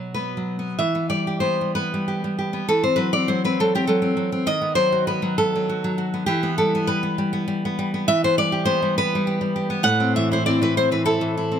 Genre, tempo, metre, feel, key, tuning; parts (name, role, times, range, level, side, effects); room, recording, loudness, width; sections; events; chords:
romantic piece for solo classical guitar; 100 BPM; 3/4; rubato; E minor; A4 = 440 Hz
nylon-string guitar; solo; 0.0-11.6 s; A2 to F#5; -19 LUFS; equal
light reverb; close, detailed microphones; -19 LUFS; side -8 dB against mid
0.8-11.6 A section
0.0 B; 0.8 Em; 2.7 F#m7b5/E; 4.5 B7/D#; 6.3 Em; 9.9 Am